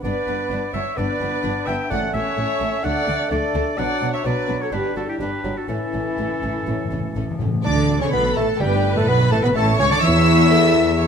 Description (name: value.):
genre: quick classical-period movement for symphony orchestra.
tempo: 127 BPM.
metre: 4/4.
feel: straight.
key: D major.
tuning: A4 = 440 Hz.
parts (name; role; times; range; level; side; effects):
dark studio violin section; melody; 0.0-11.1 s; G4 to E6; -28 LUFS; left 4 dB; none.
clear oboe; second line; 0.0-11.1 s; G4 to G5; -28 LUFS; right 2 dB; none.
dark clarinet; second line; 0.0-11.1 s; C#4 to E5; -30 LUFS; left 2 dB; none.
large flute ensemble; second line; 0.0-11.1 s; E4 to E5; -31 LUFS; left 1 dB; none.
warm bassoon; accompaniment; 0.0-11.1 s; E3 to E4; -27 LUFS; right 2 dB; none.
warm chamber viola section; accompaniment; 0.0-11.1 s; E4 to E5; -27 LUFS; right 1 dB; none.
dark French horn section; sustained chords; 0.0-11.1 s; G3 to E4; -25 LUFS; left 10 dB; none.
clear chamber double bass section; bass; 0.0-11.1 s; G1 to E2; -25 LUFS; right 2 dB; none.
warm chamber violin section; second line; 0.1-11.1 s; A3 to E5; -32 LUFS; left 1 dB; none.
warm chamber cello section; bass; 0.1-11.1 s; G2 to E3; -24 LUFS; right 2 dB; none.
timpani; percussion; 1.9-2.6, 5.7-9.3 s; A2 to D3; -28 LUFS; left 1 dB; none.
room: moderate scoring stage reverb, RT60 1.7 s.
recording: none.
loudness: -17 LUFS.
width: side -7 dB against mid.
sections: 0.0-7.6 A section; 7.6-11.1 B section.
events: timpani fill 5.7-7.6.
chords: 0.0 G; 1.9 A; 2.8 D; 3.8 Bm; 4.7 G; 5.7 A; 7.6 D5; 8.6 Gadd9; 9.6 A.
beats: | 0.04 0.50 0.97 1.44 | 1.91 2.38 2.85 3.32 | 3.79 4.26 4.73 5.20 | 5.69 6.18 6.67 7.16 | 7.65 8.12 8.60 9.07 | 9.55 10.02 10.50 10.97.